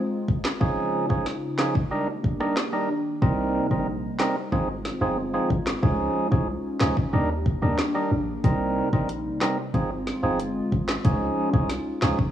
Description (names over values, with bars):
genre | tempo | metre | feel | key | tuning
dancehall | 92 BPM | 4/4 | straight | unclear | A4 = 440 Hz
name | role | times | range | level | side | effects
hollow soft pad | sustained chords | 0.0-12.3 s | C3 to G4 | -30 LUFS | left 2 dB | chorus, sidechain pumping
afro-pop drum kit | drums | 0.3-12.3 s | handclaps, hi-hat, kick drum, rim click, snare drum | -26 LUFS | equal | none
percussive tonewheel organ | accompaniment | 0.6-12.2 s | F3 to Bb4 | -26 LUFS | right 2 dB | overdrive, sidechain pumping
warm 808-style bass | bass | 3.2-12.2 s | G1 to Eb2 | -28 LUFS | equal | none
room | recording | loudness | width
light reverb, digital ambience | worn, warbling old tape, cassette tape, warbly pitch drift, small room ambience | -22 LUFS | side -10 dB against mid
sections
0.0-12.3 A section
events
none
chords
0.0 Ab6; 0.6 Dbadd9; 1.9 Ebmaj7; 3.2 Cm7; 4.5 Ab6; 5.8 Dbadd9; 7.1 Ebmaj7; 8.4 Cm7; 9.7 Ab6; 11.0 Dbadd9